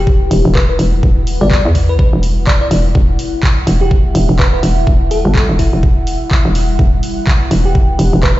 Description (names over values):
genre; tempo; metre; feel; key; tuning
bass house; 125 BPM; 4/4; swing 59% on 16ths; E minor; A4 = 440 Hz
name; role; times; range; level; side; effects
bell-like FM electric piano; melody; 0.0-8.4 s; E4 to D5; -21 LUFS; left 2 dB; chorus, phaser, ping-pong delay
deep dark ambient pad; sustained chords; 0.0-8.4 s; G3 to F#5; -22 LUFS; left 1 dB; chorus, built-in reverb, sidechain pumping
hollow knocking FM bass; bass; 0.0-8.4 s; E1 to E2; -13 LUFS; equal; tube saturation, sidechain pumping
sub drop; sound effects; 0.3-1.0 s; none; barely audible; none; none
electronic kick drum; drums; 0.1-8.3 s; none; -12 LUFS; equal; none
big-room dance drum kit; drums; 0.3-8.3 s; handclaps, hi-hat; -22 LUFS; equal; none
room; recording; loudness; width
digital ambience; played on a big sound system in a bare room, large studio reverb, nothing above 7.8 kHz; -10 LUFS; side -16 dB against mid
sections
0.0-8.4 A section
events
impact 0.0-1.0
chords
0.0 Emadd9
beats
0.07 0.55 | 1.03 1.51 1.99 2.47 | 2.95 3.43 3.91 4.39 | 4.87 5.35 5.83 6.31 | 6.79 7.27 7.75 8.23